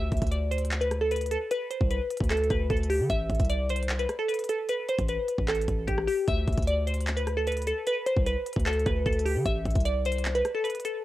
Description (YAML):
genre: hip hop, trap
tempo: 151 BPM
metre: 4/4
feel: half-time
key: unclear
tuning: A4 = 439 Hz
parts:
  - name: glassy wavetable pluck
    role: melody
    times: 0.0-11.0 s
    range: G4 to E5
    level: -28 LUFS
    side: equal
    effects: chorus, cassette tape, tape echo
  - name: hard-hitting 808-style bass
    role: bass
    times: 0.0-10.4 s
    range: A1 to D3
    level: -29 LUFS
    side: equal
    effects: none
  - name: trap drum kit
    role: drums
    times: 0.1-10.9 s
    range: handclaps, hi-hat, kick drum, rim click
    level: -31 LUFS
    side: equal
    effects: none
room: little or no reverb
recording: home recording on cassette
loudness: -25 LUFS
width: side -15 dB against mid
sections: 0.0-11.0 A section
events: none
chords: 0.0 Cmaj7sus2 (rootless); 3.1 Am; 6.3 Cmaj7sus2 (rootless); 9.5 Am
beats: 0.32 0.71 1.11 | 1.51 1.91 2.30 2.70 | 3.10 3.50 3.89 4.29 | 4.69 5.08 5.48 5.88 | 6.28 6.67 7.07 7.47 | 7.87 8.26 8.66 9.06 | 9.46 9.85 10.25 10.65